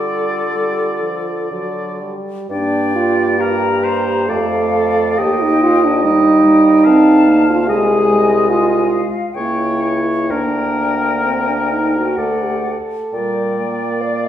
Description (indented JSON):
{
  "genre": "classical, slow romantic movement for wind quintet",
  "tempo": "58-75 BPM",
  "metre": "3/4",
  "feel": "rubato",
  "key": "G minor",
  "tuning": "A4 = 440 Hz",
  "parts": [
    { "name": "hollow concert flute", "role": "melody", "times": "0.0-14.3 s", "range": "A4 to Bb5", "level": "-24 LUFS", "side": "left 5 dB", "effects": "none" },
    { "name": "warm oboe", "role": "second line", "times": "0.0-14.3 s", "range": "Bb4 to F5", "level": "-21 LUFS", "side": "left 1 dB", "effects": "none" },
    { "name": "dark clarinet", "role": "accompaniment", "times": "0.0-14.3 s", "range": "G3 to F#4", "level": "-24 LUFS", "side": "right 4 dB", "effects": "none" },
    { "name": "warm French horn", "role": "accompaniment", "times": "0.0-14.3 s", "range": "F3 to Eb5", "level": "-16 LUFS", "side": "right 1 dB", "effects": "none" },
    { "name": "warm bassoon", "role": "bass", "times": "0.0-14.3 s", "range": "C2 to D3", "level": "-22 LUFS", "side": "right 1 dB", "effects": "none" }
  ],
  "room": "wet recital hall reverb, RT60 1.6 s",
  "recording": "recorded in a church or concert hall",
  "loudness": "-13 LUFS",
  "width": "side -11 dB against mid",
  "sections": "0.0-2.5 A section; 2.5-14.3 A section",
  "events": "none",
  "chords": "0.0 Dsus4; 1.5 D; 2.5 Gm; 5.2 Eb; 7.7 Ab/C; 9.4 C#dim7; 10.3 Gm/D; 12.2 D; 13.1 Gm/Bb",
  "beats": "0.54 1.51 | 2.51 3.40 4.30 | 5.19 6.04 6.86 | 7.69 8.49 9.36 | 10.31 11.24 12.18 | 13.13 14.02"
}